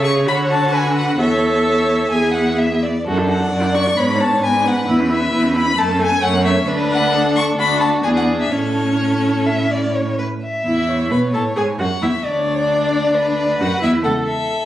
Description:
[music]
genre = quick classical-period movement for string quartet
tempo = 132 BPM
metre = 4/4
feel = rubato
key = A major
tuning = A4 = 440 Hz
[part]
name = rich violin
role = melody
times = 0.0-14.7 s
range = C#5 to C#6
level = -21 LUFS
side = left 3 dB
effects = none
[part]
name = warm violin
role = second line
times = 0.0-14.7 s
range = F#4 to G#5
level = -23 LUFS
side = equal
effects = none
[part]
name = rich viola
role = accompaniment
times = 0.0-14.3 s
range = A3 to B4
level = -20 LUFS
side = equal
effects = none
[part]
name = rich cello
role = bass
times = 0.0-14.4 s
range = C#2 to D3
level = -20 LUFS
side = right 1 dB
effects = none
[sound]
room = moderate recital hall reverb, RT60 1.3 s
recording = recorded on a phone in the room, club reverb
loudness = -15 LUFS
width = side -12 dB against mid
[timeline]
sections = 0.0-10.4 A section; 10.4-14.7 A section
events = none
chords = 0.3 Bm/D; 1.2 A/E; 2.1 E; 3.1 D/F#; 4.0 G#dim; 4.9 C#m/E; 5.8 F#m; 6.7 D; 8.0 E7; 8.5 A; 10.4 A/E; 12.2 E5/D; 14.0 A/C#

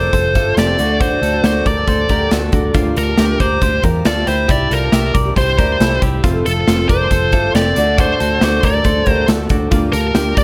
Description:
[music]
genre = jangly indie pop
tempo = 138 BPM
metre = 4/4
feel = straight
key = unclear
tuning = A4 = 439 Hz
[part]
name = high-gain lead guitar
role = melody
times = 0.0-10.4 s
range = A4 to D5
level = -20 LUFS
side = equal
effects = distortion
[part]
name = picked twelve-string acoustic guitar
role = accompaniment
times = 0.0-10.4 s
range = D3 to A4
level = -25 LUFS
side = equal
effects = analog delay
[part]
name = twelve-string electric guitar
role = arpeggios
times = 0.0-10.4 s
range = C4 to D5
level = -24 LUFS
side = equal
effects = analog delay
[part]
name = vintage muted fingered electric bass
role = bass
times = 0.0-10.4 s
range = F1 to E2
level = -22 LUFS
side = equal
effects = none
[part]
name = big rock drum kit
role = drums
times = 0.1-10.4 s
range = hi-hat, kick drum, snare drum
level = -20 LUFS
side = equal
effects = none
[sound]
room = light reverb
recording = echo-heavy mix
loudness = -15 LUFS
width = mono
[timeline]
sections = 0.0-10.4 A section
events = none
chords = 0.0 F; 0.8 D; 2.7 Gm7/D; 4.5 Cadd9; 6.2 F; 7.8 D; 9.7 Gm7/D

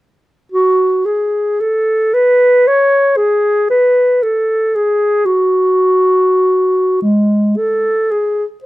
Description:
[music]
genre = classical, free, expressive piece for unaccompanied clarinet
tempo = 32-40 BPM (dotted quarters)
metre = 6/8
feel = rubato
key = unclear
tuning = A4 = 440 Hz
[part]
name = warm clarinet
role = solo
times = 0.5-8.7 s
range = G#3 to C#5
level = -11 LUFS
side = equal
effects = none
[sound]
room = light reverb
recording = close, detailed microphones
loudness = -11 LUFS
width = side -17 dB against mid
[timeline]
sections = 0.5-8.7 A section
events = none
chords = none

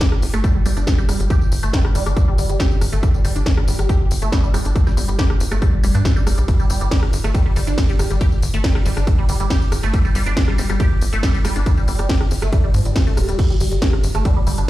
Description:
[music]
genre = driving peak-time techno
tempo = 139 BPM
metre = 4/4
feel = straight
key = unclear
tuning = A4 = 440 Hz
[part]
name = resonant blip pluck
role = riff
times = 0.0-14.6 s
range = F3 to G4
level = -26 LUFS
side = right 1 dB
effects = phaser, tube saturation, analog chorus, sidechain pumping, tape echo
[part]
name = electronic kick drum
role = drums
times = 0.0-14.3 s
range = none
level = -16 LUFS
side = equal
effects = overdrive, small room ambience
[part]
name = techno drum kit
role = drums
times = 0.0-14.7 s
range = crash cymbal, hi-hat, ride cymbal, rim click, snare drum, tambourine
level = -26 LUFS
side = equal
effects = overdrive, sidechain pumping on hats, small room ambience, sidechain pumping on cymbals, sidechain pumping on perc
[part]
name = tight sequencer bass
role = bass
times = 0.2-14.6 s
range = D1 to G2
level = -19 LUFS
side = equal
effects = sidechain pumping
[sound]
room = little or no reverb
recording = played on a big sound system in a bare room, large studio reverb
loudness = -15 LUFS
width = side -16 dB against mid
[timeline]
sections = 0.0-14.7 A section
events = none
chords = 0.0 G5

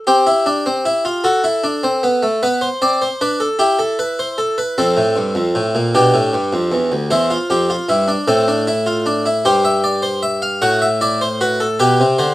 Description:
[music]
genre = classical, baroque-style 4-part fugue for harpsichord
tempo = 51 BPM (dotted quarters)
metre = 6/8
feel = straight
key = F major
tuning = A4 = 441 Hz
[part]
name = harpsichord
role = solo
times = 0.0-12.3 s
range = D2 to F#5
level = -14 LUFS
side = equal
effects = none
[sound]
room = little or no reverb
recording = close, detailed microphones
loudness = -14 LUFS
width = side -16 dB against mid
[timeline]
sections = 0.0-4.8 A section; 4.8-12.3 B section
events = none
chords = 0.1 C; 1.2 D7; 2.4 Bm7; 3.6 C/E; 4.8 F; 6.0 G7; 7.1 C/E; 8.3 F/A; 9.4 C/G; 10.6 D7/A; 11.8 G/B

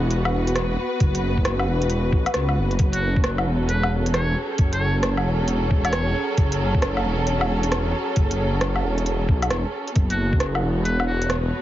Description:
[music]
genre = future garage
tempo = 134 BPM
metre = 4/4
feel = swing 65% on 16ths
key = F# minor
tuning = A4 = 442 Hz
[part]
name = dark studio string section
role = sustained chords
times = 0.0-11.6 s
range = F#3 to F#5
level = -26 LUFS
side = equal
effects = sidechain pumping
[part]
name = swelling detuned saw bass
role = bass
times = 0.0-11.5 s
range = E1 to C#2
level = -23 LUFS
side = equal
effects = sidechain pumping
[part]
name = organic electronic drum kit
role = drums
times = 0.1-11.4 s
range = hi-hat, rim click, woodblock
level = -27 LUFS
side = equal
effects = none
[part]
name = electronic kick drum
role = drums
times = 1.0-10.4 s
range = none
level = -20 LUFS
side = equal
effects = none
[part]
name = trumpet with metal mute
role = melody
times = 2.9-6.3, 10.1-11.3 s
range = F#4 to C#5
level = -29 LUFS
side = equal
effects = vintage 12-bit sampler grit, analog delay
[sound]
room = light reverb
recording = heavily compressed radio sound, multiband compression, cassette tape, nothing above 7.5 kHz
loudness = -19 LUFS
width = side -13 dB against mid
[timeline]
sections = 0.0-11.6 A section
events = none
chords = 0.0 B5; 2.8 F#m9

